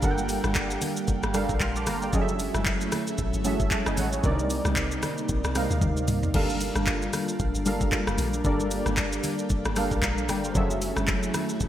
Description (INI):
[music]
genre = amapiano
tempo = 114 BPM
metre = 4/4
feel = swing 58% on 16ths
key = G minor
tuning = A4 = 440 Hz
[part]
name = warm analog keys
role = accompaniment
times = 0.0-11.7 s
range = C3 to F6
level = -29 LUFS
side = right 2 dB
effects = chorus
[part]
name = airy breathy pad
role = sustained chords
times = 0.0-11.7 s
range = C3 to G4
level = -33 LUFS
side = right 1 dB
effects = chorus, sidechain pumping
[part]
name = deep log drum bass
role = bass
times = 0.0-11.7 s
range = F1 to D2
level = -30 LUFS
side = equal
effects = none
[part]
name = smooth R&B drum kit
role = drums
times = 0.0-11.7 s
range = crash cymbal, handclaps, hi-hat, kick drum, rim click, shaker, toms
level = -28 LUFS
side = equal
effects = gated reverb
[part]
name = congas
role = percussion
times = 0.0-11.5 s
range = none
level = -35 LUFS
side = left 3 dB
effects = none
[sound]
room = light reverb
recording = bright 1980s-style digital production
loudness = -24 LUFS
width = side -11 dB against mid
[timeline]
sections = 0.0-11.7 A section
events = drum fill 5.8-6.3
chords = 0.0 Gm7; 2.1 F#m7; 4.2 Cm7; 6.3 Gm7; 10.6 F#m7